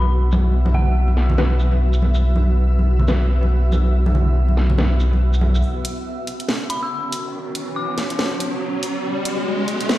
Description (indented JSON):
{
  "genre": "deep dubstep",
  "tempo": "141 BPM",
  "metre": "4/4",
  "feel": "swing 59% on 16ths, half-time",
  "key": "unclear",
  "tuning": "A4 = 444 Hz",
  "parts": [
    { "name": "granular cloud pad", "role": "sustained chords", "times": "0.0-10.0 s", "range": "B3 to E5", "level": "-27 LUFS", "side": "equal", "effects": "built-in reverb" },
    { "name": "saturated sub bass", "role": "bass", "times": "0.0-5.6 s", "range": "B1", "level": "-16 LUFS", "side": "equal", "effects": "none" },
    { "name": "congas", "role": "percussion", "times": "0.0-5.5 s", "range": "none", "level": "-25 LUFS", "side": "right 1 dB", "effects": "none" },
    { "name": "garage drum kit", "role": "drums", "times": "0.3-10.0 s", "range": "hi-hat, shaker, snare drum", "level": "-27 LUFS", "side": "equal", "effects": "low-pass filter on snare, small room ambience, low-pass filter on perc, low-pass filter on hats" },
    { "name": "dark detuned synth bell", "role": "melody", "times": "0.7-1.2, 6.7-8.2 s", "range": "F#5 to E6", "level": "-29 LUFS", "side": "left 2 dB", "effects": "chorus, low-pass filter, dub echo" },
    { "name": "filtered dub chord stab", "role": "stabs", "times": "1.4-10.0 s", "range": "B3 to B4", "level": "-31 LUFS", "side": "left 2 dB", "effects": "phaser, ensemble chorus, dub echo" },
    { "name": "riser", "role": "sound effects", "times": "6.9-10.0 s", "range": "none", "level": "-27 LUFS", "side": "left 1 dB", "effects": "none" }
  ],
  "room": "light reverb",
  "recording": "played on a big sound system in a bare room, stone room reverb, low-pass filter",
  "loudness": "-17 LUFS",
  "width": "side -15 dB against mid",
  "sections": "0.0-5.6 A section; 5.6-10.0 B section",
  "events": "build-up 5.6-10.0; filter sweep on ambient pad 5.6-10.0; filter sweep on synth bell 5.6-10.0; riser 6.9-10.0",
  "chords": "0.0 B5"
}